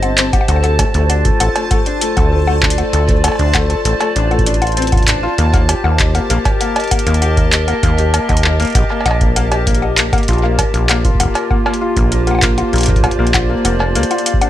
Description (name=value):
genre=IDM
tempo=98 BPM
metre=4/4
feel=straight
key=unclear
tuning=A4 = 440 Hz
part: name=warbly tape-like pad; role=sustained chords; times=0.0-14.5 s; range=Bb3 to Eb5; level=-20 LUFS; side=equal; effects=chorus, built-in reverb
part: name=felt-muted upright piano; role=arpeggios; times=0.0-14.5 s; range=A3 to F5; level=-21 LUFS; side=left 4 dB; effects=vintage 12-bit sampler grit, digital delay
part: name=deep acid bass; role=bass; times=0.0-14.0 s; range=F1 to Eb2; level=-16 LUFS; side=equal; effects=none
part: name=booming analog drum machine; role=drums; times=0.0-14.5 s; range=bongos, cowbell, handclaps, hi-hat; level=-18 LUFS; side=left 1 dB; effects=studio reverb
part: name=bubbling stepped-filter texture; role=texture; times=0.0-14.5 s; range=A5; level=-26 LUFS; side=right 1 dB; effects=chorus, built-in reverb, sidechain pumping
part: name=electronic kick drum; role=drums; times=0.3-14.5 s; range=none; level=-17 LUFS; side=equal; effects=studio reverb
room=little or no reverb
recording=none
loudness=-12 LUFS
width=side -13 dB against mid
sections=0.0-14.5 A section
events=none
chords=0.5 Dm7; 5.4 Eb; 10.3 Bb6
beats=| 0.48 1.10 1.71 2.32 | 2.93 3.55 4.16 4.77 | 5.38 6.00 6.61 7.22 | 7.83 8.44 9.06 9.67 | 10.28 10.89 11.51 12.12 | 12.73 13.34 13.96